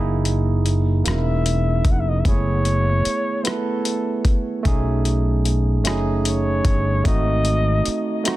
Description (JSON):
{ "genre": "slow six-eight R&B", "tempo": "50 BPM (dotted quarters)", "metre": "6/8", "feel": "straight", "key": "unclear", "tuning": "A4 = 440 Hz", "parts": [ { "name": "barky tine electric piano", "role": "accompaniment", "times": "0.0-8.4 s", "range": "G#3 to B4", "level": "-24 LUFS", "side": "right 4 dB", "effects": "overdrive" }, { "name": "fretless electric bass", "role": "bass", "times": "0.0-7.9 s", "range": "E1 to B1", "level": "-20 LUFS", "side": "equal", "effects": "wide subtle chorus" }, { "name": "dusty soul sampler-style drum kit", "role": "drums", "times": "0.3-8.4 s", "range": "hi-hat, kick drum, rim click", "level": "-21 LUFS", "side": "left 1 dB", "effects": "overdrive" }, { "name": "dark flugelhorn", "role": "melody", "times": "1.1-8.3 s", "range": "A4 to F#5", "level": "-25 LUFS", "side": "left 2 dB", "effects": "ping-pong delay" } ], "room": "little or no reverb", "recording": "dense, heavily limited modern master", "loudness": "-18 LUFS", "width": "side -16 dB against mid", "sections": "0.0-8.4 A section", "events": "none", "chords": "0.0 F#13; 2.3 F#m11; 4.7 B13; 7.1 G#7b9" }